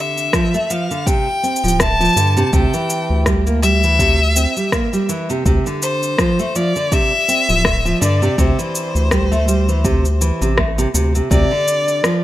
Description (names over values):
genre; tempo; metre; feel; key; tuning
folktronica; 82 BPM; 4/4; swing 56% on 16ths; D minor; A4 = 439 Hz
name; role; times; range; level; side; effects
rich violin; melody; 0.0-12.2 s; C5 to A5; -19 LUFS; left 2 dB; digital delay
nylon-string guitar; arpeggios; 0.0-12.2 s; C3 to C4; -19 LUFS; right 1 dB; low-pass filter, digital delay
electronic cabasa and rim click; drums; 0.2-12.2 s; none; -21 LUFS; left 1 dB; studio reverb
electronic kick drum; drums; 0.3-11.5 s; none; -19 LUFS; equal; studio reverb
round analog bass; bass; 1.6-11.5 s; D1 to G2; -17 LUFS; equal; none
room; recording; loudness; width
studio reverb; none; -14 LUFS; side -14 dB against mid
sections
0.0-11.3 A section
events
none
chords
0.0 Dm7; 2.5 C/D; 5.5 Dm7; 8.4 Am7/D; 11.3 Dm7